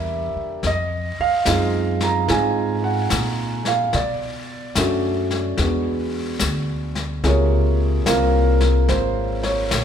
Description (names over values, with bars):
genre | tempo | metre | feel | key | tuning
jazz ballad | 73 BPM | 4/4 | swing 66% on 8ths | unclear | A4 = 441 Hz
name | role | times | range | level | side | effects
warm grand piano | accompaniment | 0.0-9.8 s | C3 to Bb5 | -21 LUFS | right 2 dB | none
upright bass | bass | 0.0-9.8 s | Ab1 to Cb3 | -22 LUFS | left 1 dB | none
vintage brush drum kit | drums | 0.6-9.8 s | brushed snare drum, hi-hat, snare drum | -27 LUFS | left 4 dB | none
room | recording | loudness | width
moderate recital hall reverb, RT60 1.7 s | recorded in a church or concert hall | -18 LUFS | side -8 dB against mid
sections
0.0-9.8 A section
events
none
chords
0.0 C7 (rootless); 0.6 Fm7; 3.9 Cbm7; 5.6 E9; 7.2 Bbm9